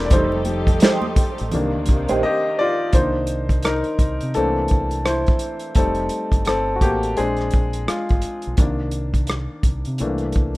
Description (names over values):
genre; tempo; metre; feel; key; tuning
R&B, neo-soul; 85 BPM; 4/4; swing 61% on 16ths; C minor; A4 = 440 Hz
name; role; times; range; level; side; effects
clear baby grand piano; accompaniment; 0.0-10.6 s; Eb3 to Eb5; -22 LUFS; left 1 dB; none
dark studio string section; sustained chords; 0.0-2.9 s; C3 to A4; -27 LUFS; right 1 dB; none
deep dub fingered electric bass; bass; 0.0-10.6 s; F1 to C3; -25 LUFS; equal; none
warm soul drum kit; drums; 0.1-10.6 s; hi-hat, kick drum, rim click, snare drum; -18 LUFS; equal; none
congas; percussion; 0.1-2.2 s; none; -31 LUFS; right 1 dB; none
electric guitar through a small old amp; second line; 0.8-2.2 s; A3 to C5; -25 LUFS; right 4 dB; wah, tape echo
room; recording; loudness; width
studio reverb; rough home demo mix; -18 LUFS; side -19 dB against mid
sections
0.0-2.9 A section; 2.9-10.6 B section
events
grand piano solo 0.0-2.9, 2.9-10.6; silent gap 2.2-2.9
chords
0.1 F9; 1.5 Cm7; 4.3 C13; 5.8 F9; 7.2 Bb9; 8.6 Cm7; 10.0 C13